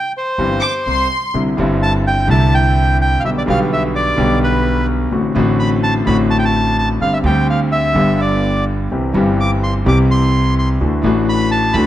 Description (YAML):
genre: tango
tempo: 127 BPM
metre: 4/4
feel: rubato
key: C major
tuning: A4 = 440 Hz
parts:
  - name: bandoneon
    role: melody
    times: 0.0-11.9 s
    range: B4 to D6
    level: -18 LUFS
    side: right 1 dB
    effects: none
  - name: bright concert grand piano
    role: accompaniment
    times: 0.4-11.9 s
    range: G1 to G4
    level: -16 LUFS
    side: left 2 dB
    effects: none
  - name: upright bass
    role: bass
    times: 0.4-11.9 s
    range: G1 to D2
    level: -18 LUFS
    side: right 1 dB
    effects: none
  - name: warm studio violin section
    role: second line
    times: 0.6-1.3 s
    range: C6 to D6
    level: -19 LUFS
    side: left 1 dB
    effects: none
room: light reverb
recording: none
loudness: -13 LUFS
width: side -12 dB against mid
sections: 0.0-1.3 A section; 1.3-11.9 B section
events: none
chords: 0.0 C; 1.3 Cadd9; 3.2 G/B; 5.1 D7/A; 7.0 Gsus4; 8.0 G; 8.9 C; 10.8 Dadd9